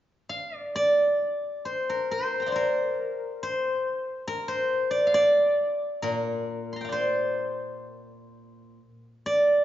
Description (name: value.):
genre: chinese traditional, Chinese solo plucked strings.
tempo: 63-70 BPM.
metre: 2/4.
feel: rubato.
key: unclear.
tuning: A4 = 438 Hz.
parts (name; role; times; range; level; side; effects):
steel-string zither; solo; 0.3-9.6 s; Bb2 to C6; -24 LUFS; equal; none.
room: moderate recital hall reverb, RT60 1.4 s.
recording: recorded in a church or concert hall, nothing above 7.5 kHz.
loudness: -24 LUFS.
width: side -12 dB against mid.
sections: 0.0-1.6 A section; 1.6-9.6 B section.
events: none.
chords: none.